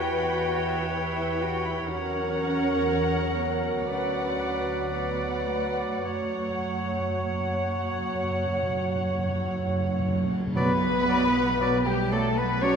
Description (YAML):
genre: classical, slow romantic movement for symphony orchestra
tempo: 50-62 BPM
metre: 4/4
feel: rubato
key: B minor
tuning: A4 = 440 Hz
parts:
  - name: muted chamber violin section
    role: melody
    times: 0.0-12.8 s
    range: G4 to G5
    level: -34 LUFS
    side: left 4 dB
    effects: none
  - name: clear oboe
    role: second line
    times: 0.0-12.8 s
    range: C#5 to D5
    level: -37 LUFS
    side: right 1 dB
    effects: none
  - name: mellow hollow concert flute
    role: second line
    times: 0.0-12.8 s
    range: F#5 to C#6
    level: -35 LUFS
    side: left 1 dB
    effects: none
  - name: muted chamber violin section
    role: second line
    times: 0.0-12.8 s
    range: G4 to B5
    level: -37 LUFS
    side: left 2 dB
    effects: none
  - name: warm clarinet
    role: second line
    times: 0.0-12.8 s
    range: G4 to C#5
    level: -34 LUFS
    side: left 3 dB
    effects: none
  - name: muted chamber viola section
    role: accompaniment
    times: 0.0-12.8 s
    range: F#4 to C#5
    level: -37 LUFS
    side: right 1 dB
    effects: none
  - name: warm bassoon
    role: accompaniment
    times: 0.0-12.8 s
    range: E3 to F#3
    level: -34 LUFS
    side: right 2 dB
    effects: none
  - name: mellow French horn section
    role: sustained chords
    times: 0.0-12.8 s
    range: G3 to C#5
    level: -32 LUFS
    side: left 1 dB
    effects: none
  - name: muted chamber cello section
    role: bass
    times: 0.0-12.8 s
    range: G3 to F#4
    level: -32 LUFS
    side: right 3 dB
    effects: none
  - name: muted chamber double bass section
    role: bass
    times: 0.0-12.8 s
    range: B1 to F#2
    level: -33 LUFS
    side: right 4 dB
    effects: none
  - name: timpani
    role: percussion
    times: 6.0-12.1 s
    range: F#2 to B2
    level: -31 LUFS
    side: right 1 dB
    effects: none
  - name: cymbal swell and tam-tam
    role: percussion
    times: 6.1-12.8 s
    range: none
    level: -39 LUFS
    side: left 1 dB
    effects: none
room: wet concert hall reverb, RT60 2.5 s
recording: none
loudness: -24 LUFS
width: side -6 dB against mid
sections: 0.0-10.6 A section; 10.6-12.8 B section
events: timpani fill 6.1-10.6; band accent 10.6-11.6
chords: 0.0 C#m7b5/E; 1.9 F#7/E; 3.9 Bm/D; 6.1 F#; 10.6 Bm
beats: 0.92 | 1.89 2.88 3.89 4.92 | 6.05 7.23 8.36 9.46 | 10.56 11.60 12.63